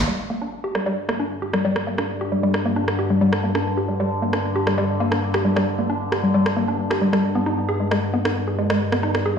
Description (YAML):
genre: driving peak-time techno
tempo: 134 BPM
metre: 4/4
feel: straight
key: unclear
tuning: A4 = 440 Hz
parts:
  - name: woody wave-folded pluck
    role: riff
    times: 0.0-9.3 s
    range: G3 to Ab4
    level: -22 LUFS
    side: left 1 dB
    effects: chorus, overdrive, digital delay
  - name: overtone-sweeping drone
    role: drone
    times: 0.7-9.4 s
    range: G2 to D3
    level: -24 LUFS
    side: left 1 dB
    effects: chorus, built-in reverb
  - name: electronic rim click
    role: drums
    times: 0.8-9.2 s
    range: none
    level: -26 LUFS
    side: right 2 dB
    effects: overdrive, low-pass filter on snare, studio ambience, low-pass filter on hats
room: wet stone room reverb, RT60 1.2 s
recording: played on a big sound system in a bare room, large studio reverb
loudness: -19 LUFS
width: side -7 dB against mid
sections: 0.1-9.4 A section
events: none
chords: 0.1 G5; 7.2 N.C.